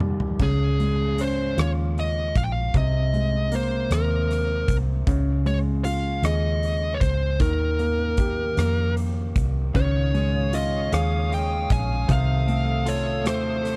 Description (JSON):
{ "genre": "six-eight pop ballad", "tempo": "51 BPM (dotted quarters)", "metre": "6/8", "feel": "straight", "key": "unclear", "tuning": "A4 = 442 Hz", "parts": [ { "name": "warm concert grand piano", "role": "accompaniment", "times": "0.0-13.8 s", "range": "Eb2 to A4", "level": "-29 LUFS", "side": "equal", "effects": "none" }, { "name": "huge arena drum kit", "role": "drums", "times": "0.0-13.8 s", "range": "crash cymbal, hi-hat, kick drum, rim click, toms", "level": "-31 LUFS", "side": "equal", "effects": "none" }, { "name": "fuzz lead guitar", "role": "melody", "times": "0.4-13.8 s", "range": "Ab4 to Ab5", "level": "-30 LUFS", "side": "equal", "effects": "distortion" }, { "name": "vintage muted fingered electric bass", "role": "bass", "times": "0.4-13.8 s", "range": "Bb1 to F2", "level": "-27 LUFS", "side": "equal", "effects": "none" }, { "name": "warm studio string section", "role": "sustained chords", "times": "9.8-13.8 s", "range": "A4 to Eb6", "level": "-39 LUFS", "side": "equal", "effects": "none" }, { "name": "direct-recorded clean electric guitar", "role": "arpeggios", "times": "9.8-13.8 s", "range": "Eb3 to F4", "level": "-37 LUFS", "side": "equal", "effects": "spring reverb" } ], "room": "little or no reverb", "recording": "none", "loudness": "-23 LUFS", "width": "mono", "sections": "0.4-13.8 A section", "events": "drum fill 0.0-0.4", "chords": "0.4 Dbadd9; 2.7 Abadd9/C; 5.1 Dbadd9; 7.4 Ebadd9; 9.8 Dbadd9; 12.1 F7/C" }